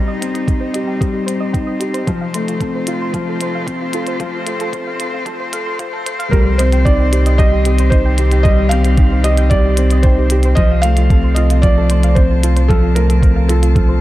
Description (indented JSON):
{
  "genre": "piano and strings electronica",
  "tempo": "113 BPM",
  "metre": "4/4",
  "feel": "straight",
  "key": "unclear",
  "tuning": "A4 = 437 Hz",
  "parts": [
    { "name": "dark string quartet", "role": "sustained chords", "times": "0.0-14.0 s", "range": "C3 to A5", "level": "-24 LUFS", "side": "left 2 dB", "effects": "sidechain pumping" },
    { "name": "soft round pluck", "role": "arpeggios", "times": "0.0-13.9 s", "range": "F4 to Eb6", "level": "-28 LUFS", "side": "right 4 dB", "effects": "chorus, sidechain pumping, digital delay" },
    { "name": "dark grand piano", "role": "riff", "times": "0.0-14.0 s", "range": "F3 to C5", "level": "-19 LUFS", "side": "left 2 dB", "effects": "digital delay" },
    { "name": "electronic hi-hat", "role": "drums", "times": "0.2-13.9 s", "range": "none", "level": "-26 LUFS", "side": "left 1 dB", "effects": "none" },
    { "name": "electronic kick drum", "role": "drums", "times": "0.5-13.9 s", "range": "none", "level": "-14 LUFS", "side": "equal", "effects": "none" },
    { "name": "felt-muted upright piano", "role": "melody", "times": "6.3-14.0 s", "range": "A4 to F5", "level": "-20 LUFS", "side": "right 2 dB", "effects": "digital delay" },
    { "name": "warm sub bass", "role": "bass", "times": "6.3-14.0 s", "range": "C2", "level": "-13 LUFS", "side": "equal", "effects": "sidechain pumping" }
  ],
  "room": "small room reverb",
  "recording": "dark, warm production, high-pass filter",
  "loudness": "-12 LUFS",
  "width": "side -16 dB against mid",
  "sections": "0.0-6.3 A section; 6.3-14.0 B section",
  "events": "build-up 0.0-6.3; filter sweep on synth arpeggio sound 0.0-6.3; filter sweep 0.0-6.3; drop 6.3-14.0",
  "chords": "0.0 Cm; 2.1 F/C; 6.3 Cm; 10.6 F/C"
}